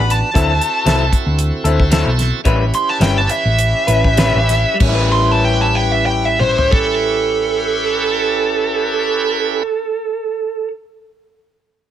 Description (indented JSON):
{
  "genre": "straight-eighth soul blues",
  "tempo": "94-117 BPM",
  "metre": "4/4",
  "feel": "swing 56% on 16ths",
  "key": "A mixolydian",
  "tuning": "A4 = 440 Hz",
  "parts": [
    { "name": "smooth overdriven lead guitar", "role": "melody", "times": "0.0-10.7 s", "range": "A4 to C6", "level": "-17 LUFS", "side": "right 2 dB", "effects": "none" },
    { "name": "bright tonewheel organ", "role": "accompaniment", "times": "0.0-9.6 s", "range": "B3 to B4", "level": "-22 LUFS", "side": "right 4 dB", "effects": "overdrive, slow rotary speaker" },
    { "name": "hollow-body short-scale fingered electric bass", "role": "bass", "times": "0.0-9.6 s", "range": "G1 to D2", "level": "-18 LUFS", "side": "equal", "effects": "none" },
    { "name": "damped 70s drum kit", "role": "drums", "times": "0.1-6.9 s", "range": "crash cymbal, hi-hat, kick drum, snare drum, toms", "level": "-18 LUFS", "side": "equal", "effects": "none" },
    { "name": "electric guitar through a small old amp", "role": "stabs", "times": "0.3-9.8 s", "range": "F#3 to B4", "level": "-21 LUFS", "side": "left 5 dB", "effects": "none" }
  ],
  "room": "small room ambience",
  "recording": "none",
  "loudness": "-13 LUFS",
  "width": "side -10 dB against mid",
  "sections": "0.0-4.8 A section; 4.8-9.9 B section",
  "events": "slowing down 0.3-4.8",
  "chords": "0.3 D9; 2.5 A9",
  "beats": "| 0.35 0.86 1.38 1.91 | 2.45 3.01 3.58 4.18 | 4.80 5.44 6.08 6.72 | 7.36 8.00 8.64 9.29"
}